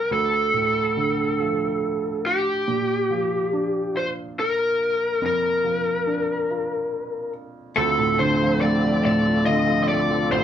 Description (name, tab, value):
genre	six-eight pop ballad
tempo	47 BPM (dotted quarters)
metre	6/8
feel	straight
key	unclear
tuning	A4 = 438 Hz
part	lead guitar through a small cranked amp	melody	0.0-10.4 s	G4 to Eb5	-22 LUFS	equal	overdrive
part	felt-muted upright piano	accompaniment	0.0-10.4 s	A1 to F4	-25 LUFS	right 2 dB	none
part	percussive tonewheel organ	sustained chords	7.8-10.4 s	D2 to A4	-27 LUFS	left 1 dB	overdrive, chorus vibrato, fast rotary speaker
part	direct-recorded clean electric guitar	arpeggios	7.8-10.4 s	A3 to F4	-27 LUFS	left 6 dB	spring reverb
room	wet studio reverb, RT60 0.5 s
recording	band playing live in one room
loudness	-20 LUFS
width	side -9 dB against mid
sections	0.0-7.8 A section; 7.8-10.4 B section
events	none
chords	0.1 Dm; 2.7 Bb6; 7.8 Dm7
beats	| 0.10 1.38 | 2.66 3.94 | 5.22 6.49 | 7.77 9.04 | 10.32